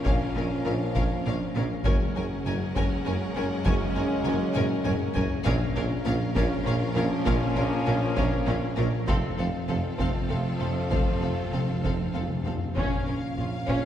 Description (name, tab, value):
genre	cinematic, epic orchestral film score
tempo	66 BPM (dotted quarters)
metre	6/8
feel	straight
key	Bb minor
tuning	A4 = 442 Hz
part	warm studio violin section	second line	0.0-13.8 s	Db4 to Bb4	-37 LUFS	left 3 dB	none
part	warm symphonic viola section	accompaniment	0.0-13.8 s	C4 to Db4	-35 LUFS	equal	none
part	mellow French horn section	sustained chords	0.0-13.8 s	A3 to Db4	-35 LUFS	left 2 dB	none
part	warm studio string section	sustained chords	0.0-13.8 s	C4 to Gb5	-37 LUFS	equal	none
part	warm trombone section	sustained chords	0.0-13.8 s	F2 to Ab3	-36 LUFS	right 3 dB	none
part	rich symphonic violin section	melody	0.1-13.8 s	F5 to Ab5	-38 LUFS	left 3 dB	none
part	clear symphonic double bass section	bass	0.1-13.8 s	F1 to Bb1	-33 LUFS	right 1 dB	none
part	rich symphonic cello section	bass	0.1-13.8 s	F2 to Bb2	-33 LUFS	right 1 dB	none
part	warm tuba	bass	0.1-13.8 s	F1 to Bb1	-33 LUFS	right 1 dB	none
part	taiko ensemble	drums	0.1-13.8 s	none	-30 LUFS	equal	none
part	timpani	percussion	5.5-6.3, 9.1-13.6 s	F2 to Bb2	-35 LUFS	left 1 dB	none
room	wet scoring stage reverb, RT60 1.5 s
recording	heard from further back in the room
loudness	-24 LUFS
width	side -10 dB against mid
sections	0.0-12.8 A section; 12.8-13.8 B section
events	drum fill 4.6-5.5; timpani fill 9.1-12.8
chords	0.0 Bbm; 1.9 Gbadd9; 5.5 Bbm; 9.1 F; 12.8 Bbm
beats	| 0.06 0.96 | 1.86 2.77 | 3.67 4.56 | 5.46 6.36 | 7.26 8.17 | 9.08 9.99 | 10.91 11.84 | 12.77 13.68